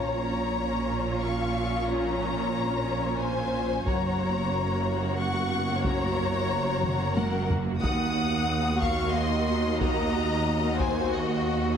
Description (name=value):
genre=cinematic, epic orchestral film score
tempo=91 BPM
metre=3/4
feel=straight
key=unclear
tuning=A4 = 441 Hz
part: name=rich symphonic violin section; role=melody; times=0.0-11.8 s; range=Eb5 to Eb6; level=-33 LUFS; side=left 5 dB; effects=none
part: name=clear symphonic violin section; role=second line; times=0.0-11.8 s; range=Gb4 to Gb5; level=-31 LUFS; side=left 2 dB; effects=none
part: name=rich symphonic viola section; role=accompaniment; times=0.0-11.7 s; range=Bb3 to Gb4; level=-32 LUFS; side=right 1 dB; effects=none
part: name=mellow French horn section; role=sustained chords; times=0.0-11.7 s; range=Bb3 to Gb4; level=-35 LUFS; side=left 4 dB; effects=none
part: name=rich symphonic cello section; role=bass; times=0.0-11.7 s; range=Eb2 to Bb2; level=-31 LUFS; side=right 2 dB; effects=none
part: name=rich symphonic double bass section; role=bass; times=0.0-11.7 s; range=Gb1 to Eb2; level=-32 LUFS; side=right 3 dB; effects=none
part: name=taiko ensemble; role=drums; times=3.9-11.4 s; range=none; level=-32 LUFS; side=equal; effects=none
room=wet scoring stage reverb, RT60 1.6 s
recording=heavily compressed radio sound, multiband compression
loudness=-24 LUFS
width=side -8 dB against mid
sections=0.0-11.8 A section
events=drum fill 6.8-7.8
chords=0.0 Bbm; 3.9 Gb; 7.8 Ebm